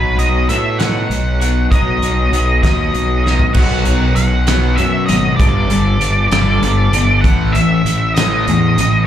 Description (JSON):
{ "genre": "quiet-loud alternative rock", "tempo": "65 BPM (dotted quarters)", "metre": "6/8", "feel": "straight", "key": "unclear", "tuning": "A4 = 440 Hz", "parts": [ { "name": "octave-fuzz lead guitar", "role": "melody", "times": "0.0-9.0 s", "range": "B4 to F#5", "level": "-18 LUFS", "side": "equal", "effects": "distortion, slapback echo, digital delay" }, { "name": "electric guitar through a small old amp", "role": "arpeggios", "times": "0.0-7.2 s", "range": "B2 to A4", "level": "-22 LUFS", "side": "equal", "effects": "wide subtle chorus, slapback echo" }, { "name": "fuzz fingered electric bass", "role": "bass", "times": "0.0-9.1 s", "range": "G1 to A2", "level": "-16 LUFS", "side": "equal", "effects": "overdrive" }, { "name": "loose indie drum kit", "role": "drums", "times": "0.2-8.9 s", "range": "crash cymbal, hi-hat, kick drum, snare drum, toms", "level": "-18 LUFS", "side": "equal", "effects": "none" }, { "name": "fuzz guitar", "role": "riff", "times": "3.6-9.1 s", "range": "G2 to B3", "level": "-17 LUFS", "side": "left 1 dB", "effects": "distortion" } ], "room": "small room ambience", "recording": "live gig heard through the venue's PA, club reverb", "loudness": "-12 LUFS", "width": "side -10 dB against mid", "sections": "0.0-3.6 A section; 3.6-9.1 B section", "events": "drum fill 3.3-3.6", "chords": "0.0 B; 5.4 Gadd9; 7.2 A5" }